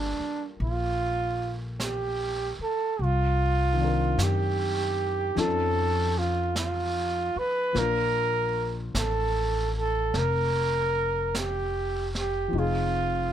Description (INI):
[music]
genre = jazz ballad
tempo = 50 BPM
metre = 4/4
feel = swing 67% on 8ths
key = unclear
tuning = A4 = 441 Hz
[part]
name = breathy trumpet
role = melody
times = 0.0-13.3 s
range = D4 to B4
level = -27 LUFS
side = right 2 dB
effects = none
[part]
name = dark concert grand piano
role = accompaniment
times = 0.0-13.3 s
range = Eb3 to Bb4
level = -34 LUFS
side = left 6 dB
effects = none
[part]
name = upright bass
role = bass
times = 0.0-13.3 s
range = F1 to F#2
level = -29 LUFS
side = left 1 dB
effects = none
[part]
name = jazz brush drum kit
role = drums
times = 0.6-13.3 s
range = brushed snare drum, hi-hat, snare drum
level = -37 LUFS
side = right 3 dB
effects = none
[sound]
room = little or no reverb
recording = close, detailed microphones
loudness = -24 LUFS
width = side -10 dB against mid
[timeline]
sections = 0.0-13.3 A section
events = none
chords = 0.0 Gm9; 3.0 Cm9; 5.4 Faug7; 7.8 Bbmaj7; 12.5 Fm7